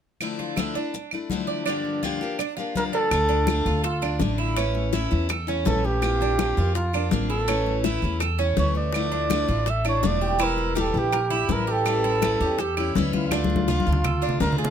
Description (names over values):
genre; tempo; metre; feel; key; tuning
latin, Cuban son and guajira; 165 BPM; 4/4; straight; D harmonic minor; A4 = 442 Hz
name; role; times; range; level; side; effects
picked steel-string acoustic guitar; accompaniment; 0.2-14.7 s; G2 to G4; -29 LUFS; left 5 dB; none
claves; percussion; 0.2-14.2 s; none; -32 LUFS; right 7 dB; none
congas; percussion; 0.2-14.7 s; none; -30 LUFS; left 4 dB; none
Cuban tres; arpeggios; 0.4-14.7 s; C#4 to D5; -29 LUFS; right 8 dB; none
trumpet with bucket mute; melody; 2.8-14.7 s; E4 to E5; -26 LUFS; right 1 dB; plate reverb
upright bass; bass; 3.1-14.7 s; E1 to F2; -26 LUFS; equal; none
bongos; percussion; 3.1-14.7 s; none; -30 LUFS; left 8 dB; none
room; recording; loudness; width
light reverb; close, detailed microphones; -21 LUFS; side -8 dB against mid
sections
0.2-3.1 A section; 3.1-14.7 B section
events
drum fill 13.3-14.7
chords
0.2 Dmadd9; 1.7 Gm7; 3.1 Dm; 4.6 A; 6.0 Bbadd9; 7.5 A; 8.9 Dmadd9; 10.4 Edim; 11.9 A7; 13.3 Dm